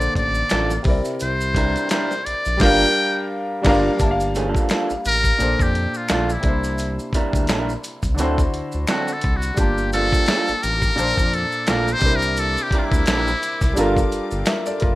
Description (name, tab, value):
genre	R&B, neo-soul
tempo	86 BPM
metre	4/4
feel	swing 57% on 16ths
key	G dorian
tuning	A4 = 440 Hz
part	trumpet with metal mute	melody	0.0-13.9 s	E4 to G5	-21 LUFS	left 1 dB	slapback echo
part	warm concert grand piano	accompaniment	0.0-15.0 s	Bb2 to A5	-24 LUFS	equal	none
part	smooth gliding synth bass	bass	0.0-15.0 s	F#1 to F2	-24 LUFS	equal	none
part	maracas and finger snaps	percussion	0.0-14.8 s	none	-35 LUFS	equal	none
part	dusty soul sampler-style drum kit	drums	0.2-15.0 s	crash cymbal, hi-hat, kick drum, snare drum	-22 LUFS	equal	none
part	electric guitar through a small old amp	second line	0.5-14.0 s	F3 to Bb4	-24 LUFS	right 2 dB	none
part	warm studio string section	sustained chords	9.6-15.0 s	Bb3 to D6	-37 LUFS	left 3 dB	none
room	studio reverb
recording	rough home demo mix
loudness	-17 LUFS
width	side -17 dB against mid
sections	0.0-4.0 A section; 4.0-15.0 B section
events	band accent 2.6-4.0; muted trumpet solo 4.0-15.0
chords	0.0 Bbmaj7; 0.9 C9; 2.6 Gm7; 4.0 Gm9; 5.4 Bbmaj7; 6.4 C9; 8.2 D7; 9.6 Gm9; 11.0 Bbmaj7; 12.0 C9; 13.8 Gm7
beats	0.51 | 1.20 1.90 2.60 3.30 | 3.99 4.69 5.39 6.09 | 6.79 7.48 8.18 8.88 | 9.58 10.27 10.97 11.67 | 12.37 13.06 13.76 14.46